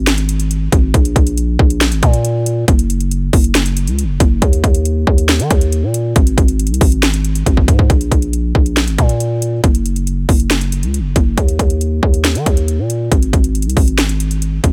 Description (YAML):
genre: hip hop, trap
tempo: 138 BPM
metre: 4/4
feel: half-time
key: unclear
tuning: A4 = 440 Hz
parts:
  - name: growling 808-style bass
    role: bass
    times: 0.0-14.7 s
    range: Gb1 to Eb3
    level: -18 LUFS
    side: equal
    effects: none
  - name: trap drum kit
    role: drums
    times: 0.1-14.7 s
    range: hi-hat, kick drum, snare drum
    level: -16 LUFS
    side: equal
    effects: none
room: little or no reverb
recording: none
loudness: -14 LUFS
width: mono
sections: 0.0-7.9 A section; 7.9-14.7 B section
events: drum fill 7.5-7.9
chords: none